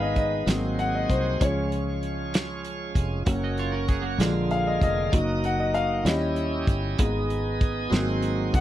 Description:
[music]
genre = slow gospel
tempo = 64 BPM (dotted quarters)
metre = 6/8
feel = straight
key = unclear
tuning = A4 = 440 Hz
[part]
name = warm concert grand piano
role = accompaniment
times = 0.0-8.6 s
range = D3 to F#5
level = -27 LUFS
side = left 2 dB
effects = none
[part]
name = bright tonewheel organ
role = sustained chords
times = 0.0-8.6 s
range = G#3 to G#5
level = -32 LUFS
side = right 5 dB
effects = slow rotary speaker, overdrive
[part]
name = fingered electric bass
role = bass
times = 0.0-8.6 s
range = E#1 to D#2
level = -29 LUFS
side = equal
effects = none
[part]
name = warm soul drum kit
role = drums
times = 0.2-8.6 s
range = hi-hat, kick drum, snare drum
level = -24 LUFS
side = equal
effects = none
[part]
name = clean electric guitar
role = second line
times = 3.4-4.3 s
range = A#3 to D#5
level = -33 LUFS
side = right 8 dB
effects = lush chorus
[sound]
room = little or no reverb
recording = dry, close 1970s-style studio recording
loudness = -23 LUFS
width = side -13 dB against mid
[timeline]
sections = 0.0-8.6 A section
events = grand piano solo 0.0-8.6; tonewheel organ fill 2.3-3.3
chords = 0.5 G#7; 1.4 C#; 3.3 F#; 4.2 A#7; 5.1 D#m/F#; 6.1 D#7b9; 7.0 G#m; 7.9 G#7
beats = 0.47 | 1.40 2.34 | 3.27 4.20 | 5.13 6.06 | 6.99 7.93

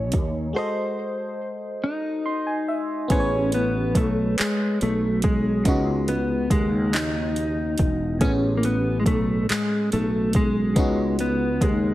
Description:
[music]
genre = slow six-eight R&B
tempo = 47 BPM (dotted quarters)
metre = 6/8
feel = straight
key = unclear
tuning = A4 = 441 Hz
[part]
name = mellow electric guitar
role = melody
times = 0.0-11.9 s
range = G#3 to C#5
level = -24 LUFS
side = left 1 dB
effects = none
[part]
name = FM electric piano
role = accompaniment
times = 0.0-11.9 s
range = A2 to B#5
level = -29 LUFS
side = equal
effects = chorus
[part]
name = sustaining fretless electric bass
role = bass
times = 0.0-11.9 s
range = E1 to D#2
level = -25 LUFS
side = equal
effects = ensemble chorus
[part]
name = smooth R&B drum kit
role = drums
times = 0.1-11.8 s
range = handclaps, hi-hat, kick drum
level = -24 LUFS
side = equal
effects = none
[sound]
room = little or no reverb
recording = none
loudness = -20 LUFS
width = side -15 dB against mid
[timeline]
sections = 0.0-3.1 A section; 3.1-11.9 B section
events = break 0.5-3.1; FM electric piano fill 1.8-3.1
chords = 0.0 B13; 0.5 G#7b9; 3.1 Amaj9; 5.7 C#m11; 8.2 Amaj9; 10.8 C#9sus4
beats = | 0.55 1.83 | 3.10 4.38 | 5.66 6.93 | 8.21 9.48 | 10.76

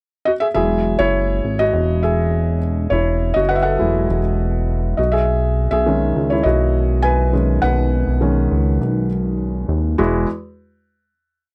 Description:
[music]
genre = piano-driven pop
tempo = 102 BPM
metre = 4/4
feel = straight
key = E major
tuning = A4 = 443 Hz
[part]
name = felt-muted upright piano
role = accompaniment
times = 0.3-10.3 s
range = E2 to G#5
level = -21 LUFS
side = equal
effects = none
[part]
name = chorused synth bass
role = bass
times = 0.6-10.3 s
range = E1 to D#2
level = -21 LUFS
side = equal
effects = none
[sound]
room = little or no reverb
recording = dry, close 1970s-style studio recording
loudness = -18 LUFS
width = mono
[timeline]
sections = 0.0-0.6 pickup bar; 0.6-10.0 verse; 10.0-11.5 final chord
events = felt piano solo 0.6-10.0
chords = 0.0 F#sus2; 0.6 Eadd9; 5.0 B6; 10.0 Eadd9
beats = | 0.56 1.15 1.74 2.33 | 2.92 3.51 4.10 4.69 | 5.28 5.87 6.46 7.05 | 7.63 8.22 8.81 9.40 | 9.99

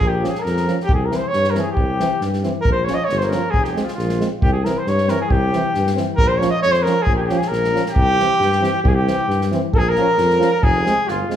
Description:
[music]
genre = balkan folk, Balkan brass band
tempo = 136 BPM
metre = 2/4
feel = straight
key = unclear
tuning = A4 = 440 Hz
[part]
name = warm flugelhorn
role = melody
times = 0.0-11.4 s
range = F4 to Eb5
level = -20 LUFS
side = equal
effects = none
[part]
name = warm flugelhorn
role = second line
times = 0.0-11.4 s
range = F4 to Eb5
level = -26 LUFS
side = left 4 dB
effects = none
[part]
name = mellow tuba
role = bass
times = 0.0-11.4 s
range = F1 to G2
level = -22 LUFS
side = equal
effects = none
[part]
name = unplugged drum kit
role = percussion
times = 0.0-11.4 s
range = kick drum, snare drum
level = -22 LUFS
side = equal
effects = none
[part]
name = clear trombone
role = accompaniment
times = 0.2-11.4 s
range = C4 to Db4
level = -29 LUFS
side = left 4 dB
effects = none
[part]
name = warm euphonium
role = accompaniment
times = 0.2-11.4 s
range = E3 to Ab3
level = -26 LUFS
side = right 4 dB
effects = none
[sound]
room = moderate recital hall reverb, RT60 1.4 s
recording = recorded in a church or concert hall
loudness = -16 LUFS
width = side -10 dB against mid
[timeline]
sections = 0.0-4.4 A section; 4.4-11.4 A section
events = none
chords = 0.0 Bbm; 0.9 C; 2.7 Bbm; 3.5 Fm; 4.4 C; 6.2 Bbm; 8.0 C; 9.7 Bbm; 10.6 Fm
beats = | 0.00 0.44 | 0.88 1.33 | 1.77 2.21 | 2.65 3.09 | 3.54 3.98 | 4.42 4.86 | 5.31 5.75 | 6.19 6.63 | 7.08 7.52 | 7.96 8.41 | 8.85 9.30 | 9.74 10.19 | 10.63 11.08

